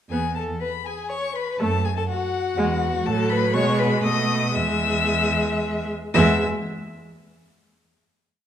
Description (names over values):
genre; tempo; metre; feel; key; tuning
quick classical-period movement for string quartet; 112-123 BPM; 3/4; straight; E major; A4 = 440 Hz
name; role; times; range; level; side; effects
clear violin; melody; 0.1-6.4 s; F#5 to E6; -26 LUFS; left 9 dB; none
rich violin; second line; 0.1-6.4 s; F#4 to E5; -27 LUFS; left 3 dB; none
rich viola; accompaniment; 0.1-6.4 s; F#3 to B3; -25 LUFS; right 1 dB; none
rich cello; bass; 0.1-6.4 s; E2 to B2; -25 LUFS; right 3 dB; none
room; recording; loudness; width
wet recital hall reverb, RT60 1.7 s; dark, warm production; -20 LUFS; side -9 dB against mid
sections
0.1-6.2 A section; 6.2-7.7 final chord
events
slowing down 2.3-6.2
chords
0.1 E5; 1.6 F#m; 2.6 E; 3.1 F#m/A; 3.6 G#madd11/B; 4.1 B7; 4.6 E